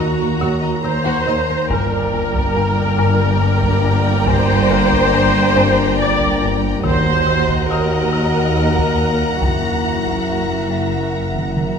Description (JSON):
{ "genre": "cinematic, suspense film score", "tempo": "70 BPM", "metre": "3/4", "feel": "straight", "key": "G harmonic minor", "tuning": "A4 = 441 Hz", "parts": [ { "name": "warm symphonic violin section", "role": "melody", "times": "0.0-11.7 s", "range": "Bb5", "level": "-28 LUFS", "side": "left 3 dB", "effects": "none" }, { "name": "warm symphonic violin section", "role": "second line", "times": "0.0-11.7 s", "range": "Gb4 to Bb5", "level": "-25 LUFS", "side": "equal", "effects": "none" }, { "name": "warm symphonic viola section", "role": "accompaniment", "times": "0.0-11.1 s", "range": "Gb4 to D5", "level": "-20 LUFS", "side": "right 1 dB", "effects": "none" }, { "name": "glass harmonica", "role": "sustained chords", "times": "0.0-11.8 s", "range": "D4 to Bb5", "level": "-27 LUFS", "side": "equal", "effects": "none" }, { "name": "folk marimba with hard mallets", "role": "riff", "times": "0.0-11.8 s", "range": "F#2 to Eb3", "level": "-22 LUFS", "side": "left 3 dB", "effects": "none" }, { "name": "rich studio double bass section", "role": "bass", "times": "0.0-11.7 s", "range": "F#1 to Eb2", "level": "-24 LUFS", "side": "right 2 dB", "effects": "none" }, { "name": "warm symphonic cello section", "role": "bass", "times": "0.0-11.8 s", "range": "Eb2 to G2", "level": "-24 LUFS", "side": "right 4 dB", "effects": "none" }, { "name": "swarming drone", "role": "drone", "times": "0.0-11.8 s", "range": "F#1 to Eb2", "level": "-27 LUFS", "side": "equal", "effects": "built-in reverb" }, { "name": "clear grand piano", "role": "texture", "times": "0.0-11.8 s", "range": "C4 to Eb6", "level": "-32 LUFS", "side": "left 3 dB", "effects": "none" }, { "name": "mellow French horn section", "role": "sustained chords", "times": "1.7-11.6 s", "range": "Bb3 to Gb4", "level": "-25 LUFS", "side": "left 4 dB", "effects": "none" }, { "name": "taiko ensemble", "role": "drums", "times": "1.7-11.8 s", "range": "none", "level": "-25 LUFS", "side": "right 1 dB", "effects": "none" }, { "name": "warm symphonic violin section", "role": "texture", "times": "6.8-11.5 s", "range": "Gb6 to Bb6", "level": "-33 LUFS", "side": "equal", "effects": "none" } ], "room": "wet scoring stage reverb, RT60 1.9 s", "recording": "none", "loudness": "-14 LUFS", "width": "side -6 dB against mid", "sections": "0.0-11.8 A section", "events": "drum fill 11.3-11.8", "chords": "0.0 Ebm; 1.7 Gm; 6.8 Ebm; 9.4 F#7", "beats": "0.84 | 1.70 2.56 3.42 | 4.27 5.13 5.99 | 6.84 7.70 8.56 | 9.42 10.27 11.13" }